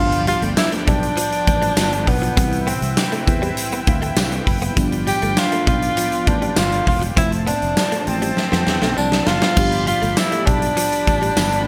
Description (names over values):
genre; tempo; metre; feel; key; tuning
1980s-style pop; 100 BPM; 4/4; straight; G mixolydian; A4 = 441 Hz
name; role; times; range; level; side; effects
mellow tenor saxophone; melody; 0.0-11.7 s; B3 to G4; -23 LUFS; equal; delay
FM electric piano with soft pad layer; accompaniment; 0.0-11.7 s; C3 to B5; -29 LUFS; equal; chorus
warm analog pad; sustained chords; 0.0-11.7 s; F3 to B5; -31 LUFS; equal; chorus, tremolo
sustaining fretless electric bass; bass; 0.0-11.7 s; E1 to F2; -26 LUFS; equal; analog chorus
direct-recorded clean electric guitar; riff; 0.1-11.5 s; F3 to C4; -32 LUFS; equal; none
big rock drum kit; drums; 0.1-11.7 s; crash cymbal, hi-hat, kick drum, snare drum, tambourine; -22 LUFS; equal; gated reverb
tambourine; percussion; 0.6-11.5 s; none; -38 LUFS; equal; none
room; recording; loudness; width
moderate plate reverb, RT60 1.9 s, small room reverb; bright 1980s-style digital production; -18 LUFS; mono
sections
0.0-9.6 A section; 9.6-11.7 A section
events
FM electric piano fill 3.6-4.8, 8.7-9.6; drum fill 8.4-9.6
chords
0.0 G7; 2.4 Cmaj7; 4.8 G7; 7.2 Fmaj7; 9.6 G7